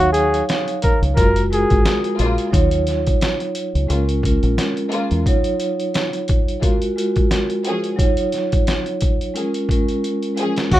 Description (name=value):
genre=hip hop, boom-bap hip-hop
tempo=88 BPM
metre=4/4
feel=swing 56% on 16ths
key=Eb minor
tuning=A4 = 439 Hz
part: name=trumpet with bucket mute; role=melody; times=0.0-2.0, 10.7-10.8 s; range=Gb4 to Bb4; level=-19 LUFS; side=left 1 dB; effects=high-pass filter, low-pass filter, ping-pong delay
part: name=vibraphone with soft mallets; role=accompaniment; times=0.0-10.8 s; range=Gb3 to F5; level=-21 LUFS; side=right 1 dB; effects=cassette tape, high-pass filter, low-pass filter
part: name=deep dub fingered electric bass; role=bass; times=0.0-5.2, 10.7-10.8 s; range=Gb1 to Fb2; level=-19 LUFS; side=equal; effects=none
part: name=trip hop sampler-style drum kit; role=drums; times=0.1-10.8 s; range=crash cymbal, hi-hat, kick drum, snare drum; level=-20 LUFS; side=equal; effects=none
part: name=dark studio string section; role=stabs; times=1.2-10.7 s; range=Db3 to Ab4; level=-27 LUFS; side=left 1 dB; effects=high-pass filter, low-pass filter, ping-pong delay
room=little or no reverb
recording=rough home demo mix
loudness=-16 LUFS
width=side -14 dB against mid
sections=0.0-10.8 A section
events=break 2.5-8.0; drum fill 10.0-10.7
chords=0.0 Ebm9; 1.2 Gbmaj9; 2.5 Ebm9; 3.9 Bbm7; 5.3 Ebm9; 6.6 Gbmaj9; 8.0 Ebm9; 9.4 Bbm7